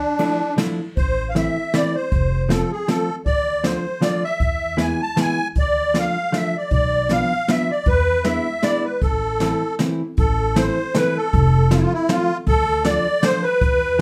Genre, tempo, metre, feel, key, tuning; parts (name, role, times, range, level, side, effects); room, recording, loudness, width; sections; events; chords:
musette waltz; 157 BPM; 3/4; swing 55% on 8ths; A harmonic minor; A4 = 440 Hz
musette accordion; melody; 0.0-14.0 s; D4 to A5; -23 LUFS; equal
hollow-body jazz guitar; accompaniment; 0.2-14.0 s; E3 to A4; -24 LUFS; equal
jazz brush drum kit; drums; 0.2-13.7 s; hi-hat, kick drum, ride cymbal, snare drum; -26 LUFS; equal
upright bass; bass; 1.0-14.0 s; F1 to E2; -25 LUFS; equal
wet studio ambience, RT60 0.5 s; heard from further back in the room; -20 LUFS; mono
1.0-10.2 A section; 10.2-14.0 A section
0.0 Dmadd9; 1.0 Am; 2.1 F; 3.3 Dm; 4.4 E; 5.6 Dm; 6.7 Bdim; 7.9 E7; 9.0 Am; 11.3 F; 12.5 Dm